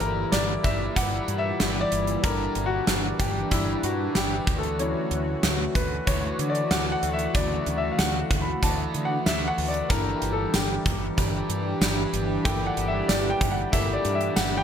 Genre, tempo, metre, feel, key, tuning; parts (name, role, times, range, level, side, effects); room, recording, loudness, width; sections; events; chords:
1980s-style pop; 94 BPM; 4/4; straight; A4 = 440 Hz
clear baby grand piano; accompaniment; 0.0-14.6 s; C#3 to B5; -28 LUFS; left 3 dB
overdriven semi-hollow guitar; accompaniment; 0.0-14.6 s; D3 to G4; -34 LUFS; right 2 dB; lush chorus
chorused pulse-width pad; sustained chords; 0.0-14.6 s; Bb2 to G4; -30 LUFS; equal
mellow fretless electric bass; bass; 0.0-14.6 s; G1 to D3; -30 LUFS; equal; ensemble chorus
gated 80s drum kit; drums; 0.0-14.5 s; hi-hat, kick drum, snare drum, tambourine; -26 LUFS; right 1 dB
light reverb; -22 LUFS; side -8 dB against mid
0.0-14.6 A section
grand piano solo 0.0-14.6
0.0 Gm6; 4.5 Dmaj7; 9.9 Gm6